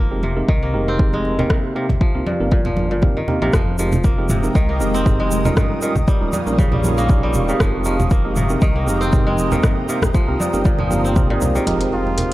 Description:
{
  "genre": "afro house",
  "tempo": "118 BPM",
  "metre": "4/4",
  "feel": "swing 54% on 16ths",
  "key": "F minor",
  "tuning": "A4 = 439 Hz",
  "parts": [
    { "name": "kora", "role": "arpeggios", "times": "0.0-12.3 s", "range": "G2 to C4", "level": "-24 LUFS", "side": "left 1 dB", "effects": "sidechain pumping, low-pass filter, analog delay" },
    { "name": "dark detuned saw bass", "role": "bass", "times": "0.0-12.3 s", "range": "Eb1 to C2", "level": "-23 LUFS", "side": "equal", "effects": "sidechain pumping" },
    { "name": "tine electric piano", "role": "stabs", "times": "0.1-12.3 s", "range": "G3 to Bb4", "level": "-23 LUFS", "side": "right 2 dB", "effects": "sidechain pumping, low-pass filter, analog delay" },
    { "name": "congas", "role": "percussion", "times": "0.2-12.3 s", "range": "none", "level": "-24 LUFS", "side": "right 2 dB", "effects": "none" },
    { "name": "electronic kick drum", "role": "drums", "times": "0.5-11.3 s", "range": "none", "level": "-17 LUFS", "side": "equal", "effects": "overdrive" },
    { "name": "deep house drum kit", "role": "drums", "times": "1.5-12.3 s", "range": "hi-hat, rim click, toms", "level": "-25 LUFS", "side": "left 1 dB", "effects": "overdrive" },
    { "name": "ethereal airy pad", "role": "sustained chords", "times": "4.2-12.3 s", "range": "Ab3 to Eb6", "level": "-27 LUFS", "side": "equal", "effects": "ensemble chorus, built-in reverb, sidechain pumping" },
    { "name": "egg shaker", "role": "percussion", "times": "3.5-11.6 s", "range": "none", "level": "-33 LUFS", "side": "right 2 dB", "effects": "none" },
    { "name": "impact", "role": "sound effects", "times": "11.7-12.3 s", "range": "none", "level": "-28 LUFS", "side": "equal", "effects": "none" },
    { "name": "trumpet with bucket mute", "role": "melody", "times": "11.9-12.3 s", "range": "F4", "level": "-25 LUFS", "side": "equal", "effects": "none" }
  ],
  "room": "little or no reverb",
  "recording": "dry, gritty hardware recording",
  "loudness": "-15 LUFS",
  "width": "side -16 dB against mid",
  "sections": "0.0-11.7 A section",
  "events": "impact 11.7-12.3",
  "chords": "0.0 Fm11; 1.5 Cm7; 3.5 Fm11; 5.6 Eb9; 7.6 Fm11; 9.6 Cm7; 11.7 Fm11"
}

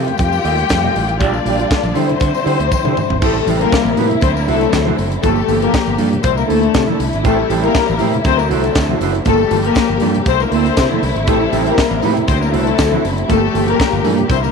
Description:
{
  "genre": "disco",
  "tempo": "119 BPM",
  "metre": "4/4",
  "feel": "straight",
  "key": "G dorian",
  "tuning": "A4 = 440 Hz",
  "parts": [
    { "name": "warm studio string section", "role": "second line", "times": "0.0-14.5 s", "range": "A3 to G5", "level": "-17 LUFS", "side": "left 11 dB", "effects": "none" },
    { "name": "mellow electric guitar", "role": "accompaniment", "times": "0.0-14.5 s", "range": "Bb3 to Eb5", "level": "-21 LUFS", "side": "right 16 dB", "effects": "none" },
    { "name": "warm studio string section", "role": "sustained chords", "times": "0.0-14.5 s", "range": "Bb2 to G4", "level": "-21 LUFS", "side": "equal", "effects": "none" },
    { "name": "modern bright fingered electric bass", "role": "bass", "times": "0.0-14.5 s", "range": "F#1 to D3", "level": "-19 LUFS", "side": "right 2 dB", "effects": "none" },
    { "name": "tight funk drum kit", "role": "drums", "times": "0.1-14.4 s", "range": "crash cymbal, hi-hat, kick drum, snare drum, toms", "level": "-20 LUFS", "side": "right 1 dB", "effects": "none" },
    { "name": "congas", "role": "percussion", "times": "0.1-14.5 s", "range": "none", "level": "-27 LUFS", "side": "left 10 dB", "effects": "none" },
    { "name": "tambourine", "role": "percussion", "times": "0.2-14.5 s", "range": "none", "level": "-38 LUFS", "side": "left 13 dB", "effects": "none" }
  ],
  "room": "moderate echo chamber reverb, RT60 2.3 s",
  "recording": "1960s-style stereo with parts hard left and right",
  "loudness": "-13 LUFS",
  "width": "side -5 dB against mid",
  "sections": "0.0-3.2 A section; 3.2-14.5 B section",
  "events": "drum fill 2.7-3.2",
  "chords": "0.0 F9; 1.2 Bb6; 2.0 D9sus4; 3.2 Am7; 4.2 D9; 5.2 Gm9; 6.2 C13; 7.2 Am7; 8.3 D9; 9.3 Gm9; 10.3 C13; 11.3 Am7; 12.3 D9; 13.3 Gm9"
}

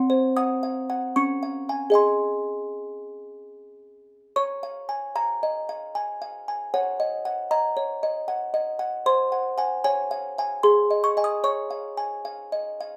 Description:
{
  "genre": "classical, lullaby for music box",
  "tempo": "76 BPM",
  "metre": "3/4",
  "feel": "straight",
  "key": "Db major",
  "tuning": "A4 = 440 Hz",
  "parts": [
    { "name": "music box", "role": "solo", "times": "0.0-13.0 s", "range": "C4 to Eb6", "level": "-25 LUFS", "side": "equal", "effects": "none" }
  ],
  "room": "moderate studio reverb, RT60 0.5 s",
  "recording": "none",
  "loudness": "-25 LUFS",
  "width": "mono",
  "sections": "0.0-13.0 A section",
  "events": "none",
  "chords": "0.0 Cdim; 1.1 Db; 1.9 Ab; 4.4 Db; 6.7 Ebm7/Db; 9.1 Ab7/C; 9.8 Db; 10.6 Ab; 11.4 Db"
}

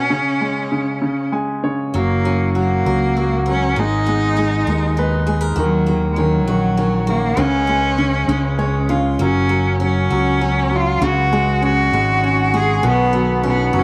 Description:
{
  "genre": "six-eight pop ballad",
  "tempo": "66 BPM (dotted quarters)",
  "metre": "6/8",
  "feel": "straight",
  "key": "F# major",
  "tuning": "A4 = 440 Hz",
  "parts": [
    { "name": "bright cello", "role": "melody", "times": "0.0-13.8 s", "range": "F#3 to G#4", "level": "-22 LUFS", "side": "equal", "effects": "none" },
    { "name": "bright concert grand piano", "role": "accompaniment", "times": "0.0-13.8 s", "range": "B2 to G#5", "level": "-23 LUFS", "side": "equal", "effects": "none" },
    { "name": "picked steel-string acoustic guitar", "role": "arpeggios", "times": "1.9-13.8 s", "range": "D#3 to A#4", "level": "-27 LUFS", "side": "equal", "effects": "none" },
    { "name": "fretless electric bass", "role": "bass", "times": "1.9-13.8 s", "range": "F#1 to D#2", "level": "-22 LUFS", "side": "equal", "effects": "none" }
  ],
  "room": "moderate spring reverb, RT60 2.7 s",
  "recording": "none",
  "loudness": "-17 LUFS",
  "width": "mono",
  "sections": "0.0-1.9 A section; 1.9-13.8 B section",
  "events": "grand piano fill 1.0-1.9, 4.7-5.6, 8.3-9.2",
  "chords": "0.1 C#5; 1.9 F#; 3.8 G#madd9; 5.6 D#m7; 7.4 C#5; 8.3 C#; 9.2 F#; 11.0 C#sus4; 12.8 Badd9"
}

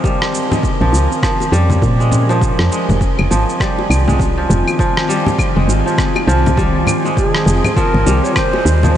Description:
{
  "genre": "organic downtempo",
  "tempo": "101 BPM",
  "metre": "4/4",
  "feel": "swing 60% on 16ths",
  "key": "F minor",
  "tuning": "A4 = 440 Hz",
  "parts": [
    { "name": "ethereal airy pad", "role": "sustained chords", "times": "0.0-9.0 s", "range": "Eb3 to Ab5", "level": "-20 LUFS", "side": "equal", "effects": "ensemble chorus, built-in reverb, sidechain pumping" },
    { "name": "kora", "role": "arpeggios", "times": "0.0-9.0 s", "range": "F3 to Ab3", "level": "-19 LUFS", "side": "right 1 dB", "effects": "diffuse ambient delay" },
    { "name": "electronic kick drum", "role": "drums", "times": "0.0-8.5 s", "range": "none", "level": "-18 LUFS", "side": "equal", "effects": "none" },
    { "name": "electronic shaker, rim click and claves", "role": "drums", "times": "0.1-8.9 s", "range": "none", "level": "-23 LUFS", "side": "equal", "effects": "overdrive" },
    { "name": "congas and bongos", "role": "percussion", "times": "0.5-8.9 s", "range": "none", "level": "-23 LUFS", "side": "left 2 dB", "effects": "none" },
    { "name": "woody FM bass", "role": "bass", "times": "0.8-9.0 s", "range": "F1 to Bb2", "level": "-14 LUFS", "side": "equal", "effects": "sidechain pumping" },
    { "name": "breathy bright ney", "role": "melody", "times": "7.2-9.0 s", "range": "Ab4 to Db5", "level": "-19 LUFS", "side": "right 1 dB", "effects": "diffuse ambient delay" }
  ],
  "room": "moderate huge ambient reverb, RT60 8.0 s",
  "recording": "dreamy mix soaked in reverb, nothing above 10.3 kHz",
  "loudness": "-12 LUFS",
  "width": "side -11 dB against mid",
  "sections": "0.0-9.0 A section",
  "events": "none",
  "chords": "0.0 Abadd9; 0.6 Bbm7; 3.0 Fm7; 7.8 Abadd9"
}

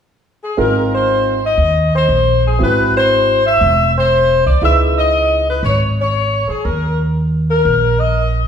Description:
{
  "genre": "jazz, big band swing",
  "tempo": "119 BPM",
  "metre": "4/4",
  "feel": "swing 68% on 8ths",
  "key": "Ab major",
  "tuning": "A4 = 445 Hz",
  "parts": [
    { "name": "warm saxophone section", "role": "melody", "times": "0.4-8.5 s", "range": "Ab4 to Fb5", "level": "-14 LUFS", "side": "left 2 dB", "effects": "none" },
    { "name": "warm grand piano", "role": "accompaniment", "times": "0.6-5.4 s", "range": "C4 to C5", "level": "-20 LUFS", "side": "right 3 dB", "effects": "none" },
    { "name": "upright bass", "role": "bass", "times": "0.6-8.5 s", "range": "E1 to Eb2", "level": "-17 LUFS", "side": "right 1 dB", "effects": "none" }
  ],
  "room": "wet recital hall reverb, RT60 1.4 s",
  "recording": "heard from further back in the room",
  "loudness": "-12 LUFS",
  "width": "side -8 dB against mid",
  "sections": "0.6-8.5 A section",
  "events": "none",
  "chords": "0.0 N.C.; 0.6 Ab69; 2.6 Abaug7; 4.6 Dbm9; 6.7 Eb5"
}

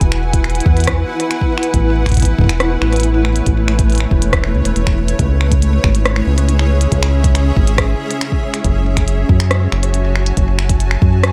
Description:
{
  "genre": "IDM",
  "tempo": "139 BPM",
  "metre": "4/4",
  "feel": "straight",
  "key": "unclear",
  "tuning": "A4 = 440 Hz",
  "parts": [
    { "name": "granular cloud pad", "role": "sustained chords", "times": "0.0-11.3 s", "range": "A3 to A5", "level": "-22 LUFS", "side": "equal", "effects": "built-in reverb" },
    { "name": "round analog bass", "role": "bass", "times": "0.0-11.3 s", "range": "E1 to F#2", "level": "-17 LUFS", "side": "equal", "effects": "none" },
    { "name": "electronic kick drum", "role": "drums", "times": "0.0-11.1 s", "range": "none", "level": "-18 LUFS", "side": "equal", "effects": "none" },
    { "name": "glitchy drum kit", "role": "drums", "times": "0.0-11.3 s", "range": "finger snaps, hi-hat, rim click", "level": "-23 LUFS", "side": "equal", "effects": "digital delay" }
  ],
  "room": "little or no reverb",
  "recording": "none",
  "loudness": "-15 LUFS",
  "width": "mono",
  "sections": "0.0-11.3 A section",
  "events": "none",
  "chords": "0.0 E; 1.7 Amaj7; 5.2 C#m7; 8.6 F#m7"
}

